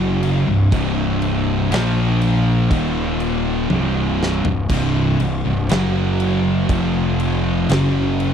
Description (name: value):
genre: stoner and doom metal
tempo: 60 BPM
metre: 4/4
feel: straight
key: unclear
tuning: A4 = 440 Hz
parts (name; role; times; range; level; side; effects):
- sludgy distorted guitar; riff; 0.0-8.3 s; C2 to Bb3; -25 LUFS; equal; overdrive
- thick fuzz guitar; riff; 0.0-8.3 s; C2 to Bb3; -21 LUFS; left 6 dB; distortion
- thick fuzz guitar; riff; 0.0-8.3 s; C2 to Bb3; -22 LUFS; right 9 dB; distortion
- fuzz fingered electric bass; bass; 0.0-8.3 s; C1 to Bb1; -22 LUFS; equal; overdrive
- big rock drum kit; drums; 0.2-8.3 s; crash cymbal, kick drum, snare drum, splash cymbal, toms; -26 LUFS; equal; none
room: little or no reverb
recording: dry, close 1970s-style studio recording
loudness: -16 LUFS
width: side -8 dB against mid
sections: 0.0-8.3 A section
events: drum fill 3.7-4.7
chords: 0.0 C5; 1.7 Bb5; 2.7 Eb5; 3.7 C5; 5.7 F#5; 6.7 F5; 7.7 N.C.